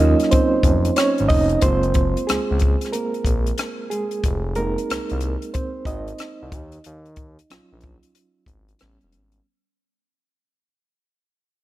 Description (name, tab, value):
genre	R&B, neo-soul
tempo	92 BPM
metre	4/4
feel	swing 64% on 16ths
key	Eb dorian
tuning	A4 = 440 Hz
part	reed electric piano	accompaniment	0.0-9.5 s	Gb3 to Eb5	-21 LUFS	right 2 dB	fast tremolo
part	smooth synth bass	bass	0.0-9.4 s	E1 to Eb2	-22 LUFS	left 1 dB	none
part	compact cocktail drum kit	drums	0.2-9.4 s	hi-hat, kick drum, rim click	-22 LUFS	left 1 dB	none
room	light reverb, small room ambience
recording	none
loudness	-18 LUFS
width	side -15 dB against mid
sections	0.0-9.5 A section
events	fade-out 0.0-9.5; reed electric piano solo 0.0-9.5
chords	0.0 Ab9sus4 (rootless); 1.6 Gbmaj9; 4.2 Fm7; 6.5 Ebm9; 8.8 A9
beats	0.32 0.97 | 1.63 2.28 2.93 3.58 | 4.24 4.89 5.54 6.19 | 6.84 7.50 8.15 8.80